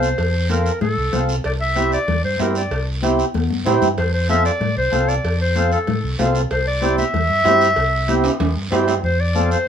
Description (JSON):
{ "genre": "latin, cumbia", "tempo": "190 BPM", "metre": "4/4", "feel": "straight", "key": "F major", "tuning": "A4 = 435 Hz", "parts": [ { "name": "clear clarinet", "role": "melody", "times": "0.0-9.7 s", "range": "A4 to E5", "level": "-20 LUFS", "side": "left 1 dB", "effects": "none" }, { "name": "mellow accordion", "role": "accompaniment", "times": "0.0-9.6 s", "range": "C4 to A4", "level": "-20 LUFS", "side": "right 2 dB", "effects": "none" }, { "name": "fingered electric bass", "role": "bass", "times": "0.0-9.5 s", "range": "C2 to A2", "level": "-21 LUFS", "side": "equal", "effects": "none" }, { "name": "guiro", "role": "percussion", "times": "0.0-9.7 s", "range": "none", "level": "-33 LUFS", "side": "right 3 dB", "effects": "none" }, { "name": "cowbell and timbales", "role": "percussion", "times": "0.2-9.0 s", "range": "none", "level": "-28 LUFS", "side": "right 2 dB", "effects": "none" }, { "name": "congas", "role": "percussion", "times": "0.5-9.5 s", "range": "none", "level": "-27 LUFS", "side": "left 7 dB", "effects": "none" } ], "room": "moderate studio reverb, RT60 0.6 s", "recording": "minimal, uncompressed stereo recording", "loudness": "-16 LUFS", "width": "side -8 dB against mid", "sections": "0.0-9.0 A section", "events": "drum fill 3.3-4.0, 8.2-9.0", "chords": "0.0 F; 1.4 C; 4.0 F; 6.5 C; 9.0 F", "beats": "| 0.18 0.50 0.81 1.13 | 1.45 1.76 2.08 2.40 | 2.71 3.03 3.35 3.66 | 3.98 4.29 4.61 4.93 | 5.24 5.56 5.88 6.19 | 6.51 6.82 7.14 7.46 | 7.77 8.09 8.41 8.72 | 9.04 9.36 9.67" }